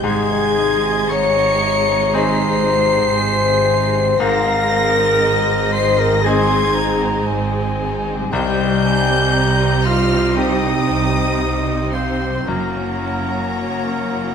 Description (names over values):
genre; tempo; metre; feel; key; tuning
cinematic; 58 BPM; 4/4; rubato; Ab major; A4 = 439 Hz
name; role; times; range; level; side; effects
rich studio violin section; melody; 0.0-14.3 s; Bb5 to Db7; -24 LUFS; left 1 dB; none
dark clarinet; second line; 0.0-14.3 s; Bb3 to Db5; -25 LUFS; left 2 dB; none
mellow concert flute; second line; 0.0-14.3 s; Eb5 to C6; -26 LUFS; left 2 dB; none
rich studio violin section; second line; 0.0-14.3 s; G3 to Eb5; -28 LUFS; left 4 dB; none
warm oboe; second line; 0.0-14.3 s; Bb4 to Db6; -24 LUFS; right 3 dB; none
bright grand piano; accompaniment; 0.0-14.3 s; C2 to Ab4; -26 LUFS; left 2 dB; none
rich studio viola section; accompaniment; 0.0-14.3 s; C3 to Db4; -25 LUFS; right 1 dB; none
mellow French horn section; sustained chords; 0.0-14.3 s; G3 to Db5; -21 LUFS; left 4 dB; none
concert harp; arpeggios; 0.0-14.3 s; Gb2 to Fb4; -29 LUFS; left 8 dB; none
clear studio cello section; bass; 0.0-14.3 s; Gb2 to C3; -25 LUFS; right 4 dB; none
rich studio double bass section; bass; 0.0-14.3 s; Gb1 to C2; -24 LUFS; right 5 dB; none
room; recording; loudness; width
wet scoring stage reverb, RT60 1.6 s; none; -14 LUFS; side -7 dB against mid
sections
0.0-14.3 A section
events
none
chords
0.0 Ab; 8.3 Cm; 12.5 Gb7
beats
| 0.04 1.11 2.15 3.17 | 4.20 5.23 6.26 7.29 | 8.33 9.35 10.37 11.42 | 12.48 13.56